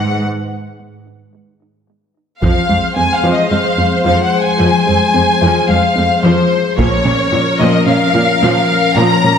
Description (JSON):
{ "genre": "cinematic, hybrid orchestral and electronic film score", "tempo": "110 BPM", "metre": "4/4", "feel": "straight", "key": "F minor", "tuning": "A4 = 441 Hz", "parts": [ { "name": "warm symphonic violin section", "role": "melody", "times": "0.0-9.4 s", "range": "C5 to Bb5", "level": "-17 LUFS", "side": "left 2 dB", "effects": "none" }, { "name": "dark analog pad", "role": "sustained chords", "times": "0.0-9.4 s", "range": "Eb3 to Db5", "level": "-18 LUFS", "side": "left 3 dB", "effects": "chorus" }, { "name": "rich symphonic cello section", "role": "bass", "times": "0.0-9.3 s", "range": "F2 to Bb2", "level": "-19 LUFS", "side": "right 2 dB", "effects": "none" }, { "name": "warm symphonic violin section", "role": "second line", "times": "2.4-9.4 s", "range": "C5 to Bb5", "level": "-18 LUFS", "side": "left 2 dB", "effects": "none" }, { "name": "rich symphonic viola section", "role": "accompaniment", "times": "2.4-9.4 s", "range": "F3 to C5", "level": "-18 LUFS", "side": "equal", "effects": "none" }, { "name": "resonant blip pluck", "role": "arpeggios", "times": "2.4-9.4 s", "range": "F3 to F4", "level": "-20 LUFS", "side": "equal", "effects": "chorus, tape echo" }, { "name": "taiko ensemble", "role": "drums", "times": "2.4-3.5, 6.8-7.8 s", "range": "none", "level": "-19 LUFS", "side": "equal", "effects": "none" } ], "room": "wet scoring stage reverb, RT60 1.5 s", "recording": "none", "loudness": "-11 LUFS", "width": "side -7 dB against mid", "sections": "0.0-2.4 A section; 2.4-9.4 A section", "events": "break 0.2-2.4", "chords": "0.2 N.C.; 2.4 Fm; 6.8 Bbm" }